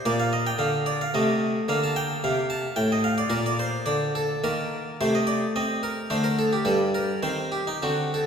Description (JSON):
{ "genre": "classical, baroque-style suite movement for harpsichord", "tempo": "108 BPM", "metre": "3/4", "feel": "rubato", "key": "Bb major", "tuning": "A4 = 440 Hz", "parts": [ { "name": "harpsichord", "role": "solo", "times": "0.0-8.3 s", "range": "G2 to A5", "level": "-22 LUFS", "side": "equal", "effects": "none" } ], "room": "wet concert hall reverb, RT60 2.4 s", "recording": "heard from further back in the room", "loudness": "-22 LUFS", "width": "side -7 dB against mid", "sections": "0.0-8.3 A section", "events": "none", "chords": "0.0 Bb; 1.1 Cm6; 1.7 Bb; 4.4 Eb5; 5.0 Cm13; 6.1 D5; 6.7 N.C.; 7.2 Cm/Eb" }